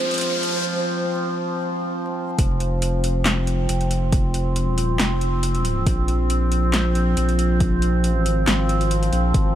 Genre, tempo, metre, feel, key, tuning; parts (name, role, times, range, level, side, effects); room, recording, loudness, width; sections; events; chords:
deep dubstep; 138 BPM; 4/4; swing 54% on 16ths, half-time; A4 = 440 Hz
overtone-sweeping drone; sustained chords; 0.0-9.6 s; F3 to C4; -24 LUFS; right 1 dB; chorus, built-in reverb
saturated sub bass; bass; 0.0-9.6 s; F1 to Bb1; -21 LUFS; equal; high-pass filter
deep house drum kit; drums; 0.0-9.4 s; handclaps, hi-hat, snare drum; -26 LUFS; equal; overdrive, small room ambience
riser; sound effects; 0.0-0.6 s; -28 LUFS; left 1 dB
backwards swelling texture; texture; 0.0-0.6 s; C5; -33 LUFS; right 2 dB; built-in reverb
electronic kick drum; drums; 2.4-9.4 s; -20 LUFS; equal; overdrive, small room ambience
light reverb; vinyl crackle; -18 LUFS; side -11 dB against mid
0.0-2.4 A section; 2.4-9.6 B section
build-up 0.0-2.4; riser 0.0-0.6; break 0.6-2.4; drop 2.4-9.6
0.0 Bb5; 2.4 F5; 5.9 Bb5